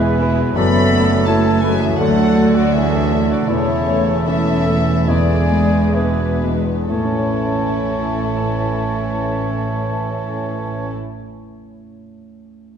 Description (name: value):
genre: classical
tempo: 60-88 BPM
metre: 4/4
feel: rubato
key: A major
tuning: A4 = 442 Hz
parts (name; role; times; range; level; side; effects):
- warm grand piano; melody; 0.0-12.8 s; D2 to C#5; -20 LUFS; equal; none
- warm chamber violin section; second line; 0.0-10.9 s; G#3 to A4; -27 LUFS; left 1 dB; none
- warm oboe; second line; 0.0-10.9 s; G#4 to C#5; -29 LUFS; equal; none
- warm bassoon; accompaniment; 0.0-10.9 s; D3 to E3; -27 LUFS; right 1 dB; none
- warm chamber viola section; accompaniment; 0.0-10.9 s; F#3 to B3; -26 LUFS; right 1 dB; none
- dark chamber cello section; bass; 0.0-10.9 s; D2 to A2; -24 LUFS; right 2 dB; none
- warm chamber double bass section; bass; 0.0-10.9 s; E1 to D2; -24 LUFS; right 4 dB; none
- warm chamber violin section; melody; 0.6-10.9 s; A4 to B5; -26 LUFS; left 4 dB; none
- silver concert flute; second line; 0.6-10.9 s; D4 to A5; -28 LUFS; left 1 dB; none
- bright trombone section; sustained chords; 0.6-10.9 s; D3 to C#4; -29 LUFS; right 2 dB; none
- dark French horn section; sustained chords; 0.6-10.9 s; B2 to B3; -25 LUFS; left 1 dB; none
room: moderate concert hall reverb, RT60 2.1 s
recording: dark, warm production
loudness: -15 LUFS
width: side -7 dB against mid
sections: 0.0-6.9 A section; 6.9-10.6 B section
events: slowing down 0.0-6.9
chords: 0.0 E; 0.6 F#m7; 2.0 D; 3.5 A/E; 5.1 E7; 6.9 A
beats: | 0.55 1.26 1.99 2.72 | 3.48 4.26 5.07 5.94 | 6.89 7.81 8.74 9.66